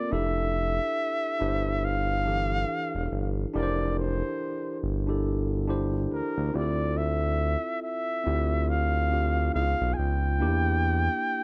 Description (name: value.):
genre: R&B, neo-soul.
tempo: 70 BPM.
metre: 4/4.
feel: swing 59% on 16ths.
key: unclear.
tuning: A4 = 440 Hz.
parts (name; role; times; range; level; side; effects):
breathy flugelhorn; melody; 0.0-11.4 s; Bb4 to G#5; -32 LUFS; equal; none.
mellow tine electric piano; accompaniment; 0.0-11.4 s; E3 to C5; -34 LUFS; equal; none.
smooth synth bass; bass; 0.1-11.1 s; E1 to E2; -30 LUFS; equal; none.
room: small room ambience.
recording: none.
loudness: -27 LUFS.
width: mono.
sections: 0.1-11.4 A section.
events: none.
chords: 0.1 Fmaj13; 6.5 Dm9; 9.5 C#9; 10.4 Em7b5.